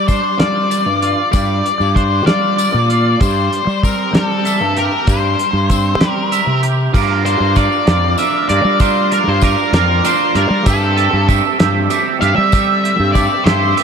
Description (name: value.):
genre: psychedelic rock.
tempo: 64 BPM (dotted quarters).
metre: 6/8.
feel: straight.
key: G dorian.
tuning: A4 = 440 Hz.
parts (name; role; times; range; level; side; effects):
octave-fuzz lead guitar; melody; 0.0-13.7 s; A4 to F5; -17 LUFS; left 5 dB; distortion, analog delay.
twangy electric guitar; riff; 0.0-13.8 s; G3 to E5; -18 LUFS; right 10 dB; rotary speaker.
fuzz fingered electric bass; bass; 0.0-13.7 s; F2 to G3; -17 LUFS; equal; overdrive.
cloth-damped thuddy drum kit; drums; 0.1-13.8 s; crash cymbal, hi-hat, kick drum, snare drum; -18 LUFS; equal; none.
tambourine; percussion; 0.1-13.3 s; none; -32 LUFS; left 16 dB; none.
room: moderate huge ambient reverb, RT60 3.9 s.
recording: dreamy mix soaked in reverb.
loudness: -12 LUFS.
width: side -6 dB against mid.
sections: 0.0-6.9 A section; 6.9-13.8 B section.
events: lead electric guitar solo 6.9-13.8.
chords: 0.0 Gm7; 3.2 Am/G (rootless); 6.9 Gm7; 10.7 Am/G.